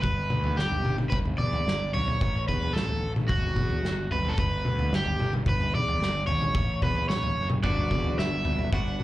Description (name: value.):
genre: indie rock.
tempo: 110 BPM.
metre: 4/4.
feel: straight.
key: unclear.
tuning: A4 = 440 Hz.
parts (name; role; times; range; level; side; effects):
crunchy overdriven guitar; melody; 0.0-9.0 s; F#4 to F#5; -30 LUFS; right 1 dB; slapback echo.
fuzz fingered electric bass; bass; 0.0-9.0 s; F#1 to E2; -30 LUFS; equal; overdrive.
loose indie drum kit; drums; 0.0-9.0 s; kick drum, snare drum, toms; -28 LUFS; equal; none.
hollow soft pad; sustained chords; 7.6-9.0 s; D5 to B5; -46 LUFS; left 1 dB; none.
electric guitar through a small old amp; riff; 7.6-9.0 s; G2 to D4; -36 LUFS; left 5 dB; warbly pitch drift, slapback echo.
twelve-string electric guitar; riff; 7.6-9.0 s; B3 to F#4; -35 LUFS; right 4 dB; wide subtle chorus, slapback echo.
room: small room ambience.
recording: live gig heard through the venue's PA, club reverb.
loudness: -24 LUFS.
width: side -16 dB against mid.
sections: 0.0-9.0 A section.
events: none.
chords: 0.0 G; 1.1 Em7/G; 2.2 A5; 3.3 Gmaj7; 5.5 Em7/G; 6.6 A5; 7.6 Gmaj7.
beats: 0.04 0.58 | 1.13 1.67 2.21 2.75 | 3.30 3.84 4.38 4.93 | 5.47 6.01 6.56 7.10 | 7.64 8.19 8.73.